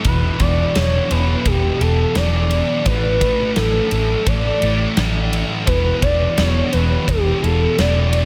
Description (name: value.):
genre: rock, shoegaze and dream pop.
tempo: 86 BPM.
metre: 4/4.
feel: straight.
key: unclear.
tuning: A4 = 440 Hz.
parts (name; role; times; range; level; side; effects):
thick fuzz guitar; riff; 0.0-8.3 s; E2 to A3; -23 LUFS; equal; distortion, analog chorus.
huge arena drum kit; drums; 0.0-8.3 s; kick drum, ride cymbal, snare drum; -25 LUFS; equal; none.
gliding portamento lead; melody; 0.1-8.3 s; G4 to D5; -23 LUFS; equal; chorus, tape echo.
vintage muted fingered electric bass; bass; 0.1-8.2 s; E1 to A1; -21 LUFS; equal; none.
room: light reverb, small room ambience.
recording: none.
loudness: -17 LUFS.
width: mono.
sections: 0.0-8.3 A section.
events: none.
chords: 0.1 E5; 2.9 Asus4; 5.7 E5.